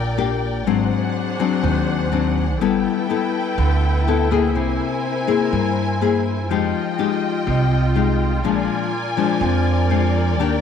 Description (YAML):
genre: bossa nova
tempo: 123 BPM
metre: 4/4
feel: straight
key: unclear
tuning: A4 = 439 Hz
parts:
  - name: nylon-string guitar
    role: accompaniment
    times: 0.0-10.6 s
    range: F2 to A4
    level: -20 LUFS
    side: left 8 dB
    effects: none
  - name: rich studio string section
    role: sustained chords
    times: 0.0-10.6 s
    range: D4 to Ab5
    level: -24 LUFS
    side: equal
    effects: none
  - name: upright bass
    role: bass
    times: 0.0-10.6 s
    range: G1 to G2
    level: -21 LUFS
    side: right 2 dB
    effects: none
room: moderate plate reverb, RT60 2.8 s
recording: none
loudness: -17 LUFS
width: side -7 dB against mid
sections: 0.0-10.6 A section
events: none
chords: 0.0 Ebmaj7 (rootless); 0.7 Ab7#11; 2.6 G69; 4.6 C7b13; 6.5 Fm9; 8.4 Bb7